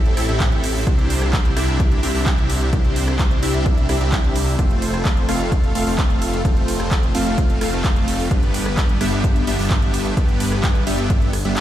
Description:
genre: EDM, festival progressive house.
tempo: 129 BPM.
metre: 4/4.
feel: straight.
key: unclear.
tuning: A4 = 439 Hz.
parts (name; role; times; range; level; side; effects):
supersaw chords; riff; 0.0-11.6 s; G3 to F5; -22 LUFS; equal; cassette tape, sidechain pumping, tape echo.
detuned saw bass; bass; 0.0-11.6 s; F1 to C2; -22 LUFS; equal; sidechain pumping.
big-room dance drum kit; drums; 0.1-11.6 s; handclaps, hi-hat, ride cymbal, rim click; -28 LUFS; right 1 dB; none.
electronic kick drum; drums; 0.4-11.2 s; none; -18 LUFS; equal; none.
room: little or no reverb.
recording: played on a big sound system in a bare room, large studio reverb.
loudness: -16 LUFS.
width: side -12 dB against mid.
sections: 0.0-11.6 A section.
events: none.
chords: 0.0 Am7; 0.9 Cadd9; 4.6 F; 8.3 G.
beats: 0.40 | 0.87 1.33 1.80 2.26 | 2.73 3.19 3.66 4.12 | 4.59 5.05 5.52 5.99 | 6.45 6.92 7.38 7.84 | 8.31 8.78 9.24 9.71 | 10.17 10.64 11.10 11.57.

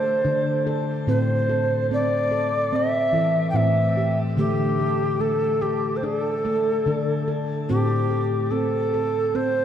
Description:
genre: world meditative.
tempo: 72 BPM.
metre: 4/4.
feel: straight.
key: A minor pentatonic.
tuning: A4 = 440 Hz.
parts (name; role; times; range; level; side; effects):
mellow reedy Native American-style cedar flute; melody; 0.0-9.6 s; G4 to G5; -23 LUFS; equal; shimmer reverb, diffuse ambient delay.
handpan; arpeggios; 0.0-9.6 s; A2 to A4; -23 LUFS; equal; diffuse ambient delay.
room: wet concert hall reverb, RT60 1.8 s, studio reverb.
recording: dark, warm production.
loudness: -20 LUFS.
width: side -9 dB against mid.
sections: 0.0-9.6 A section.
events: none.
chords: 0.0 D5; 1.1 Am; 4.4 D5; 7.7 Am.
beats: 0.24 | 1.07 1.90 2.73 3.56 | 4.38 5.21 6.04 6.87 | 7.69 8.52 9.34.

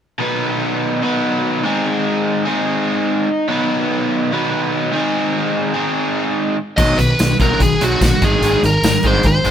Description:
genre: classic rock.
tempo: 146 BPM.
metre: 4/4.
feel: straight.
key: unclear.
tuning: A4 = 438 Hz.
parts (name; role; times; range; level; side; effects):
overdriven electric guitar; riff; 0.2-9.5 s; Ab2 to B4; -16 LUFS; equal; none.
biting lead guitar; melody; 6.8-9.5 s; F#4 to D#5; -17 LUFS; equal; overdrive.
growling picked electric bass; bass; 6.8-9.5 s; Ab1 to B1; -19 LUFS; equal; overdrive.
huge arena drum kit; drums; 6.8-9.5 s; crash cymbal, hi-hat, kick drum, snare drum, tambourine; -17 LUFS; equal; none.
room: moderate stone room reverb, RT60 1.3 s.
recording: band playing live in one room.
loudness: -14 LUFS.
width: side -9 dB against mid.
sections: 0.2-6.8 A section; 6.8-9.5 B section.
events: none.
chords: 0.2 B; 1.6 Ab; 3.5 B; 4.9 Ab; 6.8 B; 8.2 Abadd9.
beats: | 0.20 0.62 1.03 1.44 | 1.85 2.27 2.68 3.09 | 3.50 3.91 4.32 4.73 | 5.14 5.55 5.96 6.37 | 6.78 7.19 7.60 8.01 | 8.42 8.83 9.24.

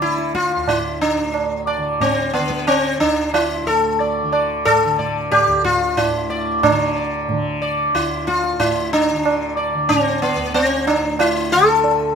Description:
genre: indian classical, Hindustani.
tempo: 91 BPM.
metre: 3/4.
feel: straight.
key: D raga kafi.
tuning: A4 = 440 Hz.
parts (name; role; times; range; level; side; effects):
sitar; melody; 0.0-12.1 s; B3 to D5; -17 LUFS; left 1 dB; none.
tanpura; drone; 0.0-12.2 s; D2 to D3; -27 LUFS; equal; none.
tabla; percussion; 0.0-12.1 s; none; -22 LUFS; right 5 dB; none.
room: moderate studio reverb, RT60 0.6 s.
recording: minimal, uncompressed stereo recording.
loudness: -16 LUFS.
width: side -6 dB against mid.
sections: 0.0-12.2 A section.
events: speeding up 0.0-12.2.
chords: none.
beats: 0.02 | 0.68 1.35 2.01 | 2.67 3.34 4.00 | 4.66 5.32 5.98 | 6.63 7.29 7.94 | 8.60 9.25 9.90 | 10.54 11.19 11.84.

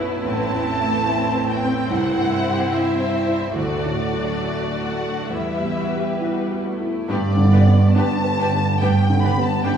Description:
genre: cinematic, emotional film score for orchestra.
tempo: 66-73 BPM.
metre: 4/4.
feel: rubato.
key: unclear.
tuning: A4 = 443 Hz.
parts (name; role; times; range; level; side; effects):
warm studio violin section; second line; 0.0-9.7 s; G3 to D5; -28 LUFS; left 2 dB; none.
clear symphonic viola section; accompaniment; 0.0-9.7 s; G3 to F#4; -28 LUFS; right 1 dB; none.
warm grand piano; accompaniment; 0.0-9.8 s; A1 to C5; -23 LUFS; right 1 dB; none.
warm symphonic cello section; bass; 0.0-9.8 s; C2 to B2; -23 LUFS; right 2 dB; none.
warm symphonic violin section; melody; 0.3-9.8 s; D5 to B5; -26 LUFS; left 1 dB; none.
rich symphonic double bass section; bass; 7.1-9.8 s; G1; -23 LUFS; right 1 dB; none.
room: wet scoring stage reverb, RT60 1.4 s.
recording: heard from further back in the room, studio ambience.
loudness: -18 LUFS.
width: side -8 dB against mid.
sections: 0.0-7.1 A section; 7.1-9.8 A section.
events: none.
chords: 0.2 Amadd9; 1.9 C; 3.6 D; 5.3 Emadd9; 7.1 G.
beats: | 0.24 1.08 1.91 2.73 | 3.57 4.42 5.31 6.21 | 7.08 7.96 8.82 9.66.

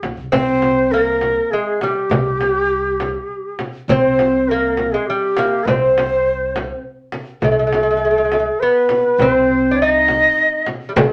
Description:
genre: Persian modal ensemble.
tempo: 101 BPM.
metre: 3/4.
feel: straight.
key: unclear.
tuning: A4 = 439 Hz.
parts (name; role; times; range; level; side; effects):
breathy shakuhachi; second line; 0.0-11.1 s; G4 to Eb5; -19 LUFS; equal; none.
upright bass; bass; 0.0-11.1 s; Bb1 to C2; -32 LUFS; equal; none.
frame drum; percussion; 0.0-11.1 s; none; -24 LUFS; equal; none.
lute; melody; 0.3-11.1 s; G3 to Eb4; -20 LUFS; equal; none.
room: moderate studio reverb, RT60 0.6 s.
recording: none.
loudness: -16 LUFS.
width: mono.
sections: 0.0-7.4 A section; 7.4-11.1 B section.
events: none.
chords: none.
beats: | 0.33 0.92 1.51 | 2.10 2.69 3.29 | 3.88 4.47 5.06 | 5.66 6.25 6.84 | 7.43 8.02 8.61 | 9.20 9.79 10.38 | 10.97.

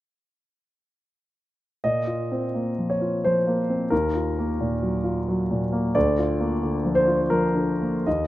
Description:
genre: neoclassical minimalist piano.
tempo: 87 BPM.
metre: 3/4.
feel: uneven beats, rubato.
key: unclear.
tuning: A4 = 440 Hz.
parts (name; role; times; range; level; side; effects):
warm concert grand piano; solo; 1.8-8.3 s; D2 to Eb5; -21 LUFS; equal; none.
room: light reverb, small room reverb.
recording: rough home demo mix.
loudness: -21 LUFS.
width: side -15 dB against mid.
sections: 1.8-8.3 A section.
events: none.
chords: 1.8 Bbsus2; 3.9 Ebmadd9; 6.0 Bb/D.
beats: | 1.84 2.54 3.24 | 3.92 4.59 5.27 | 5.95 6.61 7.30 | 8.06.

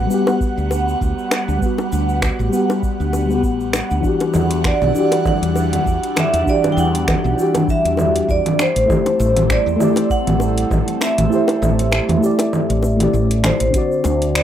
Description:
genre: sunset chillout.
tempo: 99 BPM.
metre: 4/4.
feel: swing 56% on 16ths.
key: A dorian.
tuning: A4 = 440 Hz.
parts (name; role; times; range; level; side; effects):
mellow FM electric piano; accompaniment; 0.0-14.4 s; D3 to D5; -20 LUFS; moving between left 5 dB and right 4 dB; chorus, auto-pan, low-pass filter, tape echo.
airy breathy pad; sustained chords; 0.0-13.7 s; E3 to F#5; -24 LUFS; equal; chorus, phaser.
woody fretless electric bass; bass; 0.0-14.4 s; A1 to E2; -20 LUFS; equal; tube saturation, ensemble chorus.
deep house drum kit; drums; 0.1-14.4 s; congas, finger snaps, hi-hat, shaker; -22 LUFS; equal; overdrive.
bongos; percussion; 0.3-14.2 s; none; -23 LUFS; left 2 dB; none.
electronic kick drum; drums; 0.4-13.9 s; none; -22 LUFS; equal; overdrive.
vibraphone with hard mallets; melody; 4.7-14.4 s; C5 to G5; -20 LUFS; right 1 dB; tape echo.
room: wet small room reverb, RT60 0.5 s.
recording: rough home demo mix.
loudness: -15 LUFS.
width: side -10 dB against mid.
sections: 0.0-13.7 A section.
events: kick drops out 11.3-13.7.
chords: 0.0 Gmaj7; 4.0 Em9; 8.6 Am7; 13.7 D7.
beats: 0.41 1.01 | 1.62 2.23 2.83 3.44 | 4.04 4.65 5.26 5.86 | 6.47 7.08 7.68 8.29 | 8.89 9.50 10.11 10.71 | 11.32 11.92 12.53 13.13 | 13.74 14.35.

